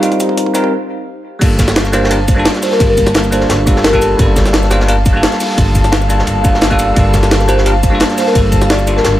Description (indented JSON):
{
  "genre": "liquid drum and bass",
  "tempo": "173 BPM",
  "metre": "4/4",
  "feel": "straight",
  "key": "G minor",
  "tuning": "A4 = 440 Hz",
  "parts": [
    { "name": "bell-like tine electric piano", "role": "accompaniment", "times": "0.0-9.2 s", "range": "G3 to A5", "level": "-16 LUFS", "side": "equal", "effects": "phaser, tape echo" },
    { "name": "airy breathy pad", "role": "sustained chords", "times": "0.0-9.2 s", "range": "Eb4 to A5", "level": "-21 LUFS", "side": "left 1 dB", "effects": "chorus, sidechain pumping" },
    { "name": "electronic kick drum", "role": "drums", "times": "0.0-8.6 s", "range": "none", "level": "-14 LUFS", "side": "equal", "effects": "high-pass filter on kick, small room ambience, high-pass filter on room" },
    { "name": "jungle sampler-style drum kit", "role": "drums", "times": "0.0-9.1 s", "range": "crash cymbal, hi-hat, shaker, snare drum", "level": "-17 LUFS", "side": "equal", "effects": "small room ambience" },
    { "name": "upright bass", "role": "bass", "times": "1.4-9.2 s", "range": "G1", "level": "-15 LUFS", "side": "equal", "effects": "none" },
    { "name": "vintage drum kit", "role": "drums", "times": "1.4-9.1 s", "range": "hi-hat, ride cymbal, snare drum", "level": "-20 LUFS", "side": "equal", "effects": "high-pass filter on cymbals, small room ambience, high-pass filter on hats, high-pass filter on snare, high-pass filter on room" },
    { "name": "folk marimba with soft mallets", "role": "melody", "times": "1.9-4.1, 7.5-9.2 s", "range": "Bb4 to D5", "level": "-17 LUFS", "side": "left 1 dB", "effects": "tape echo" }
  ],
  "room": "light reverb",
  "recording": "none",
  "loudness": "-9 LUFS",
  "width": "side -13 dB against mid",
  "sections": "0.0-1.4 A section; 1.4-9.2 B section",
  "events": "build-up 0.0-1.4; drum fill 0.0-0.7; filter sweep on analog synth pad 0.0-1.4; break 0.7-1.4; drop 1.4-9.2",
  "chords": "0.0 Eb69; 1.4 Gm9"
}